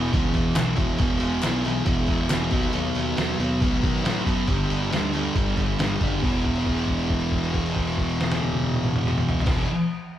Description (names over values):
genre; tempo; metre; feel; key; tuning
garage rock duo or trio; 137 BPM; 4/4; straight; unclear; A4 = 442 Hz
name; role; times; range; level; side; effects
thick fuzz guitar; riff; 0.0-9.7 s; E2 to B3; -24 LUFS; equal; distortion
fuzz fingered electric bass; bass; 0.0-9.7 s; E1 to D#3; -30 LUFS; equal; overdrive
lo-fi sampler-style drum kit; drums; 0.1-9.6 s; crash cymbal, hi-hat, kick drum, snare drum, toms; -26 LUFS; equal; none
group handclap; percussion; 0.6-2.4 s; none; -37 LUFS; left 3 dB; none
room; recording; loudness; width
light reverb; band playing live in one room; -21 LUFS; side -11 dB against mid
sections
0.0-6.2 A section; 6.2-9.7 B section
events
held note 6.2-9.5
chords
0.0 E5; 2.5 B/D#; 4.5 G5; 6.2 E5